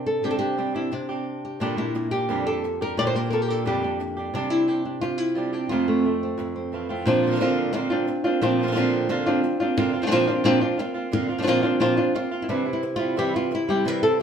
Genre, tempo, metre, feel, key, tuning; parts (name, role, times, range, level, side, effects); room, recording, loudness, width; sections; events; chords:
flamenco; 176 BPM; 4/4; straight; A4 = 441 Hz
flamenco guitar; melody; 0.0-14.2 s; F2 to D5; -22 LUFS; equal
flamenco guitar; stabs; 0.0-14.2 s; F2 to G4; -27 LUFS; right 3 dB
wet studio reverb, RT60 0.8 s; heard from further back in the room; -21 LUFS; side -7 dB against mid
0.0-7.1 A section; 7.1-12.5 B section; 12.5-14.2 C section
0.0 Csus2; 1.6 Bb6; 4.3 Csus2; 5.7 Fmaj7; 7.1 Bbadd9; 12.5 C